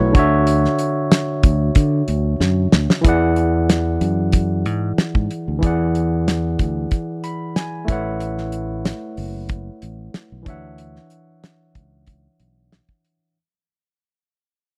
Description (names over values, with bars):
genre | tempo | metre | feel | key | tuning
lush 1970s-style soul | 93 BPM | 4/4 | swing 54% on 16ths | unclear | A4 = 440 Hz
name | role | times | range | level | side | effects
barky tine electric piano | accompaniment | 0.0-13.4 s | D3 to B5 | -23 LUFS | equal | overdrive
fingered electric bass | bass | 0.0-12.8 s | F#1 to D3 | -23 LUFS | equal | none
damped 70s drum kit | drums | 0.1-13.2 s | hi-hat, kick drum, snare drum | -18 LUFS | equal | none
room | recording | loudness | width
small room ambience | dry, close 1970s-style studio recording | -19 LUFS | mono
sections
0.0-3.0 A section; 3.0-13.4 B section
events
drum fill 2.4-3.0; fade-out 3.0-13.4; tine electric piano fill 6.9-8.2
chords
0.1 Dmaj9; 3.0 E9; 7.9 A69; 10.5 Dmaj9